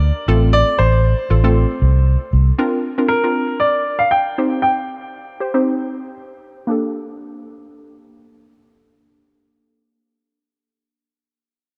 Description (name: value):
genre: dance-pop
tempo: 117 BPM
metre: 4/4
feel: straight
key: G minor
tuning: A4 = 440 Hz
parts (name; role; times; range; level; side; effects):
- clear baby grand piano; melody; 0.0-6.1 s; Bb4 to G5; -21 LUFS; equal; low-pass filter, delay
- vintage muted fingered electric bass; bass; 0.0-2.5 s; A1 to D2; -16 LUFS; equal; none
- hollow square pluck; accompaniment; 0.3-9.9 s; A3 to C5; -23 LUFS; equal; chorus, low-pass filter
room: light reverb, small room reverb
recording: dark, warm production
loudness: -17 LUFS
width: mono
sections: 0.0-6.7 A section; 6.7-10.8 B section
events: filter sweep 0.0-6.7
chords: 0.3 F/A; 2.6 Bbadd9; 4.4 Cm; 6.7 Gmadd9